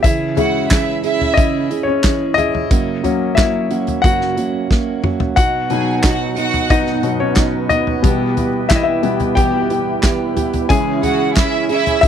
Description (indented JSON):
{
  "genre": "piano-driven pop",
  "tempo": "90 BPM",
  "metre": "4/4",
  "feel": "straight",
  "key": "B major",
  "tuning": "A4 = 440 Hz",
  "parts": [
    { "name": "warm concert grand piano", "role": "accompaniment", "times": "0.0-12.1 s", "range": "B2 to G#5", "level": "-18 LUFS", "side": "left 6 dB", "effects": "none" },
    { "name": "fingerpicked plugged-in steel-string acoustic guitar", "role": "riff", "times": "0.0-12.1 s", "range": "F#2 to G#4", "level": "-20 LUFS", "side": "right 8 dB", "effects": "none" },
    { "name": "loose indie drum kit", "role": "drums", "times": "0.0-12.1 s", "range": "handclaps, hi-hat, kick drum, snare drum, toms", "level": "-17 LUFS", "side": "equal", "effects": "none" },
    { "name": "warm studio violin section", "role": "second line", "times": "0.4-1.7, 5.7-7.0, 11.0-12.1 s", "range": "E4 to G#5", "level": "-20 LUFS", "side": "right 4 dB", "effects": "none" },
    { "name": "mellow large flute ensemble", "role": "sustained chords", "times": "5.4-12.1 s", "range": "C#4 to G5", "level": "-25 LUFS", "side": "right 1 dB", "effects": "none" }
  ],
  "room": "little or no reverb",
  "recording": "dry, close 1970s-style studio recording",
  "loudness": "-14 LUFS",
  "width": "side -8 dB against mid",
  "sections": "0.0-12.1 A section",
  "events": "grand piano solo 0.0-12.1; drum fill 4.7-5.4",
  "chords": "0.0 C#m; 2.7 F#; 5.4 B; 8.0 Em/B; 10.7 C#m"
}